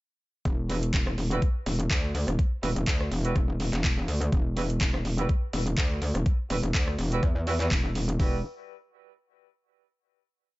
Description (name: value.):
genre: bass house.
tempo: 124 BPM.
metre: 4/4.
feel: swing 55% on 16ths.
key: E minor.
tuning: A4 = 440 Hz.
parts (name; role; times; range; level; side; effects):
metallic wobble bass; bass; 0.5-8.4 s; E1 to E2; -27 LUFS; equal; chorus, tube saturation, sidechain pumping.
garage drum kit; drums; 0.5-8.3 s; hi-hat, kick drum; -26 LUFS; equal; overdrive, small room ambience.
garage drum kit; drums; 0.5-8.2 s; handclaps, hi-hat, rim click; -33 LUFS; equal; overdrive, small room ambience.
clear horn section; stabs; 0.7-8.4 s; G3 to B4; -35 LUFS; right 2 dB; sidechain pumping, ping-pong delay.
room: digital ambience.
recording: nothing above 7.8 kHz.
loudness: -24 LUFS.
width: side -19 dB against mid.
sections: 0.5-8.2 drop; 8.2-10.1 final chord.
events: drop 0.5-8.2.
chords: 0.5 N.C.; 8.2 Emadd9.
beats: | 0.45 0.94 1.42 1.91 | 2.39 2.87 3.36 3.84 | 4.32 4.81 5.29 5.78 | 6.26 6.74 7.23 7.71 | 8.20.